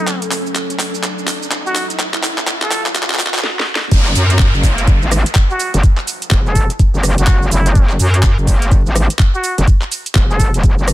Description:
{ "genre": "bass house", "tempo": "125 BPM", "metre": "4/4", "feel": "swing 61% on 16ths", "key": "unclear", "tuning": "A4 = 440 Hz", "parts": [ { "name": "trumpet with plunger mute", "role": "melody", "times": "0.0-10.5 s", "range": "E4 to A4", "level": "-23 LUFS", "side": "equal", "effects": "dub echo" }, { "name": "dark analog pad", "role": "sustained chords", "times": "0.0-3.4 s", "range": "F#3 to A4", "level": "-26 LUFS", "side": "equal", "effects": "chorus, sidechain pumping" }, { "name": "riser and downlifter", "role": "sound effects", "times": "0.0-7.8 s", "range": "none", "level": "-24 LUFS", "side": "equal", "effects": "none" }, { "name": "garage drum kit", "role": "drums", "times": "0.1-10.9 s", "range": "crash cymbal, handclaps, hi-hat, rim click, shaker, snare drum", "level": "-19 LUFS", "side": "equal", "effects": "soft clipping on snare" }, { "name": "metallic wobble bass", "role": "bass", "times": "3.9-10.9 s", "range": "E1 to F#2", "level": "-14 LUFS", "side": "equal", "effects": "distortion, chorus, overdrive, sidechain pumping" }, { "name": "electronic kick drum", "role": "drums", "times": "3.9-10.8 s", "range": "none", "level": "-11 LUFS", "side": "equal", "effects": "none" } ], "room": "digital ambience", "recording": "dense, heavily limited modern master, high-pass filter", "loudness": "-12 LUFS", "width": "side -15 dB against mid", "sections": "0.0-3.9 A section; 3.9-10.9 B section", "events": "build-up 0.0-3.9; drum fill 0.0-3.4, 3.4-3.9; riser 0.0-3.4; drop 3.9-10.9", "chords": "0.0 F#m; 3.9 Esus2", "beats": "| 0.07 0.56 1.03 1.51 | 2.00 2.48 2.96 3.44 | 3.92 4.39 4.88 5.36 | 5.83 6.32 6.79 7.28 | 7.75 8.23 8.71 9.20 | 9.68 10.15 10.63" }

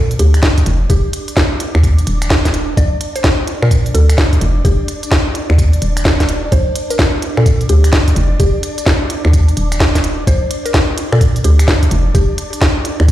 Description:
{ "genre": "UK garage, two-step garage", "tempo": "128 BPM", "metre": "4/4", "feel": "swing 63% on 16ths", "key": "Bb major", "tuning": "A4 = 445 Hz", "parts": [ { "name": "soft string machine", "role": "sustained chords", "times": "0.0-13.1 s", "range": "D4 to D5", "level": "-26 LUFS", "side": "equal", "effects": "phaser, ensemble chorus, sidechain pumping" }, { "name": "hollow knocking FM bass", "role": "bass", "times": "0.0-13.1 s", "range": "Eb1 to Bb2", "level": "-12 LUFS", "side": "equal", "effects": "none" }, { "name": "garage drum kit", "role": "drums", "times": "0.1-13.1 s", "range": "finger snaps, hi-hat, snare drum", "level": "-18 LUFS", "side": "equal", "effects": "none" }, { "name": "mallet-like synth pluck", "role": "melody", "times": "0.2-12.3 s", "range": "G4 to D5", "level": "-23 LUFS", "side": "left 1 dB", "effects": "chorus, phaser, ping-pong delay" }, { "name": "electronic kick drum", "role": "drums", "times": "0.4-13.1 s", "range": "none", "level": "-14 LUFS", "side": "equal", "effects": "none" } ], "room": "little or no reverb", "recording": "played on a big sound system in a bare room, stone room reverb", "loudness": "-11 LUFS", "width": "side -13 dB against mid", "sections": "0.0-13.1 A section", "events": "none", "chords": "0.0 Bb; 0.7 Dm/F; 1.6 N.C.; 2.8 Bb; 4.4 Dm/F; 5.4 N.C.; 6.5 Bb; 8.2 Dm/F; 9.1 N.C.; 10.3 Bb; 11.9 Dm/F", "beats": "0.43 | 0.90 1.37 1.83 2.30 | 2.77 3.24 3.71 4.18 | 4.65 5.12 5.58 6.05 | 6.52 6.99 7.46 7.93 | 8.40 8.87 9.34 9.80 | 10.27 10.74 11.21 11.68 | 12.15 12.62 13.09" }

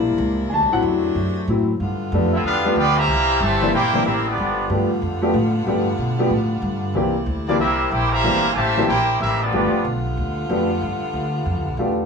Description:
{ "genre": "jazz, big band swing", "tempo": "186 BPM", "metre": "4/4", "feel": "swing 64% on 8ths", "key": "G major", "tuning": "A4 = 440 Hz", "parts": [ { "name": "warm grand piano", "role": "accompaniment", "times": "0.0-12.1 s", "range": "E3 to A5", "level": "-21 LUFS", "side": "left 2 dB", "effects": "none" }, { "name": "bright saxophone section", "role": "sustained chords", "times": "0.0-12.1 s", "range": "C3 to F4", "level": "-28 LUFS", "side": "equal", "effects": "none" }, { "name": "upright bass", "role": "bass", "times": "0.0-12.1 s", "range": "G1 to B2", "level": "-24 LUFS", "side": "equal", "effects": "none" }, { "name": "clear trumpet section", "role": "melody", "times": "2.3-4.7, 7.5-9.9 s", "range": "Bb3 to Bb5", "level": "-20 LUFS", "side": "equal", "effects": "none" }, { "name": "muted trombone section", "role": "second line", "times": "2.3-4.7, 7.5-9.8 s", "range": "Bb2 to G4", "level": "-24 LUFS", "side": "right 3 dB", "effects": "none" } ], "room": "wet studio reverb, RT60 0.8 s", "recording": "band playing live in one room, studio reverb", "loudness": "-18 LUFS", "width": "side -5 dB against mid", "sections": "0.0-1.8 A section; 1.8-12.1 B section", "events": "grand piano solo 0.0-1.8", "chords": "0.0 C7; 0.5 D7; 1.8 G7; 3.1 C7; 4.4 G7; 7.0 C7; 9.5 G7", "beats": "0.19 | 0.51 0.83 1.16 1.48 | 1.80 2.12 2.44 2.77 | 3.09 3.41 3.73 4.05 | 4.38 4.70 5.02 5.34 | 5.66 5.99 6.31 6.63 | 6.95 7.27 7.60 7.92 | 8.24 8.56 8.88 9.21 | 9.53 9.85 10.17 10.49 | 10.82 11.14 11.46 11.78" }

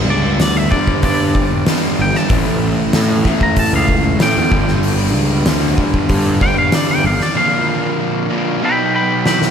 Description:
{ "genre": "quiet-loud alternative rock", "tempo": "95 BPM", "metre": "4/4", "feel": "straight", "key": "G lydian", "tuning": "A4 = 440 Hz", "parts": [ { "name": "twangy electric guitar", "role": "melody", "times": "0.0-9.5 s", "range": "D5 to B5", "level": "-19 LUFS", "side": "left 1 dB", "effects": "harmonic tremolo, slapback echo, tape echo" }, { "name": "fuzz guitar", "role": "riff", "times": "0.0-9.5 s", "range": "G2 to E4", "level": "-20 LUFS", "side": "right 10 dB", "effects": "distortion, slapback echo" }, { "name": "overdriven semi-hollow guitar", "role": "riff", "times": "0.0-9.5 s", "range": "G2 to B3", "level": "-20 LUFS", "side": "left 10 dB", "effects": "slapback echo" }, { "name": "fuzz picked electric bass", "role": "bass", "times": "0.0-7.2 s", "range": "G1 to A2", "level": "-18 LUFS", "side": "equal", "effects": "overdrive" }, { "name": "oversized low-tuned drum kit", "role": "drums", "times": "0.4-9.5 s", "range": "hi-hat, kick drum, snare drum", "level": "-17 LUFS", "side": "equal", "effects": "none" } ], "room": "light reverb, small room ambience", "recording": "none", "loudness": "-12 LUFS", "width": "side -7 dB against mid", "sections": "0.0-9.5 A section", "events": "clean electric guitar solo 0.0-9.5; drum fill 9.3", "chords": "0.0 G; 2.3 A; 4.5 G; 7.4 Bb; 8.6 B", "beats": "0.40 1.04 1.67 | 2.30 2.94 3.57 4.20 | 4.83 5.46 6.10 6.73 | 7.36 7.99 8.62 9.26" }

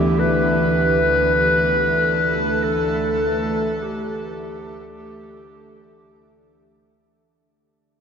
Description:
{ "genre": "ambient", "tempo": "free time", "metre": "none", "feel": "none", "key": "unclear", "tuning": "A4 = 439 Hz", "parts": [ { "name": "warm clarinet", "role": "melody", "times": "0.0-6.8 s", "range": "G4 to B4", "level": "-20 LUFS", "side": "equal", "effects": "shimmer reverb, diffuse ambient delay" }, { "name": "airy breathy pad", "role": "sustained chords", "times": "0.0-7.4 s", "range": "D2 to E5", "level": "-22 LUFS", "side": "equal", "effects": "chorus, shimmer reverb" }, { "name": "bowed-like drone", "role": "drone", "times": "0.0-7.5 s", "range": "D3 to A3", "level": "-28 LUFS", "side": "equal", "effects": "built-in reverb" } ], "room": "wet huge ambient reverb, RT60 9.6 s", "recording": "worn, warbling old tape, cassette tape, warbly pitch drift, nothing above 7.6 kHz", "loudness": "-17 LUFS", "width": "side -7 dB against mid", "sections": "0.0-7.4 A section", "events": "fade-out 0.0-7.4", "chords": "0.0 Em7/D", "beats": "free time" }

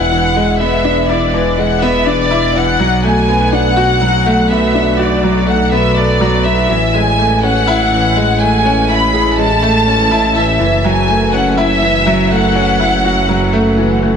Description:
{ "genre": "piano and strings electronica", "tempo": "123 BPM", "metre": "4/4", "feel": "straight", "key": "F# minor", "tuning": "A4 = 442 Hz", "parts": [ { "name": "dark studio violin section", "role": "melody", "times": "0.0-14.0 s", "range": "D5 to B5", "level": "-15 LUFS", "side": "equal", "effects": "none" }, { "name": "clear concert grand piano", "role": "riff", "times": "0.0-14.2 s", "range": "E3 to A4", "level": "-14 LUFS", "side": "equal", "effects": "tape echo" }, { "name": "dark detuned saw bass", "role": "bass", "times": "0.0-14.2 s", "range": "E1 to B1", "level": "-17 LUFS", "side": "right 1 dB", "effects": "none" } ], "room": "light reverb, studio reverb", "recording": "none", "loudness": "-10 LUFS", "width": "side -7 dB against mid", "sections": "0.0-14.2 A section", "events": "none", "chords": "0.0 E7; 2.8 Bm7; 6.7 Amaj7; 10.6 F#m7", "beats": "0.36 | 0.85 1.34 1.82 2.31 | 2.80 3.29 3.77 4.26 | 4.75 5.24 5.73 6.21 | 6.70 7.19 7.68 8.16 | 8.65 9.14 9.63 10.12 | 10.60 11.09 11.58 12.07 | 12.55 13.04 13.53 14.02" }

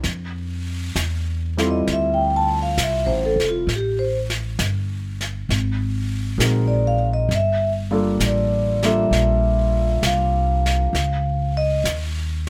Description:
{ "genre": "jazz ballad", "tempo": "66 BPM", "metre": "4/4", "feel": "swing 68% on 8ths", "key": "F major", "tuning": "A4 = 439 Hz", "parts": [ { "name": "warm concert grand piano", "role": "accompaniment", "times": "0.0-11.0 s", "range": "G3 to Bb4", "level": "-27 LUFS", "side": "equal", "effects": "none" }, { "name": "upright bass", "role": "bass", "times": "0.0-12.5 s", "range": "F1 to F2", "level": "-24 LUFS", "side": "equal", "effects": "none" }, { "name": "jazz brush drum kit", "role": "drums", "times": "0.0-12.5 s", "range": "brushed snare drum, hi-hat, snare drum", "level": "-30 LUFS", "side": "equal", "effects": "none" }, { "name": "vibraphone with medium mallets", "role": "melody", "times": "1.7-11.9 s", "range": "F4 to A5", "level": "-24 LUFS", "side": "equal", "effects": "none" } ], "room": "little or no reverb", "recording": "close, detailed microphones", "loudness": "-21 LUFS", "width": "mono", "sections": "0.1-12.5 A section", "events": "vibraphone solo 0.1-12.5", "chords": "0.1 Fmaj9; 3.7 Gsus2; 5.5 Ab9; 7.3 Gm9; 10.9 Dbadd9", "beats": "| 0.05 0.97 1.88 2.78 | 3.69 4.59 5.49 6.39 | 7.30 8.21 9.12 10.03 | 10.94 11.86" }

